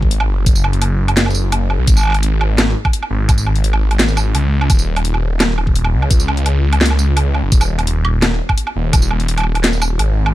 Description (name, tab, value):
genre	half-time drum and bass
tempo	170 BPM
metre	4/4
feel	half-time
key	unclear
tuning	A4 = 442 Hz
part	phased detuned saw bass	bass	0.0-10.3 s	D#1 to C#2	-15 LUFS	equal	phaser
part	electronic kick drum	drums	0.0-9.0 s	none	-13 LUFS	equal	none
part	drum and bass drum kit	drums	0.1-10.3 s	hi-hat, snare drum, tambourine, woodblock	-18 LUFS	right 1 dB	none
room	little or no reverb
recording	none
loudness	-13 LUFS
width	side -15 dB against mid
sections	0.0-10.3 A section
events	drop 0.0-10.3; kick drops out 9.6-10.3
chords	none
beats	0.11 | 0.46 0.82 1.17 1.52 | 1.88 2.23 2.58 2.94 | 3.29 3.64 3.99 4.35 | 4.70 5.05 5.41 5.76 | 6.11 6.46 6.82 7.17 | 7.52 7.88 8.23 8.58 | 8.94 9.29 9.64 9.99